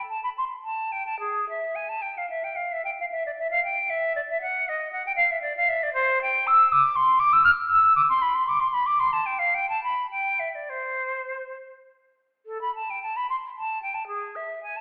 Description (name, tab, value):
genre	classical, baroque-style fantasia for unaccompanied flute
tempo	62-80 BPM (dotted quarters)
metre	6/8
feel	rubato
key	C major from 5.9 s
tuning	A4 = 440 Hz
part	bright silver concert flute	solo	0.0-14.8 s	G#4 to F6	-24 LUFS	equal	none
room	wet recital hall reverb, RT60 1.4 s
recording	recorded in a church or concert hall, telephone sound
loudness	-24 LUFS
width	mono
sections	0.0-12.5 A section; 12.5-14.8 A section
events	none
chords	none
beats	0.38 | 1.22 2.04 | 2.83 3.62 | 4.41 5.18 | 5.95 6.71 | 7.47 8.23 | 9.01 9.83 | 10.69 11.56 | 12.47 13.31 | 14.10